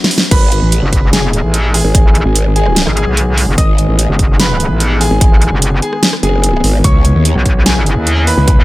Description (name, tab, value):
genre	heavy wobble dubstep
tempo	147 BPM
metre	4/4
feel	half-time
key	G# phrygian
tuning	A4 = 440 Hz
part	clear studio string section	sustained chords	0.0-8.6 s	D#3 to G#4	-22 LUFS	left 1 dB	vintage 12-bit sampler grit, sidechain pumping, low-pass filter
part	dubstep drum kit	drums	0.0-8.6 s	crash cymbal, hi-hat, rim click, snare drum	-15 LUFS	equal	none
part	bright concert grand piano	melody	0.3-8.6 s	G#4 to D#6	-20 LUFS	equal	digital delay
part	growl bass	bass	0.3-8.6 s	F#1 to D#2	-12 LUFS	equal	chorus, overdrive
part	electronic kick drum	drums	0.3-8.6 s	none	-10 LUFS	equal	overdrive
part	metallic wobble bass	bass	0.8-8.6 s	F#1 to D#2	-13 LUFS	equal	chorus, overdrive
room	little or no reverb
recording	none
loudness	-9 LUFS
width	side -18 dB against mid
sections	0.0-8.6 A section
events	break 0.0-0.3; drum fill 0.0-0.3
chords	0.3 G#m; 6.8 C#m7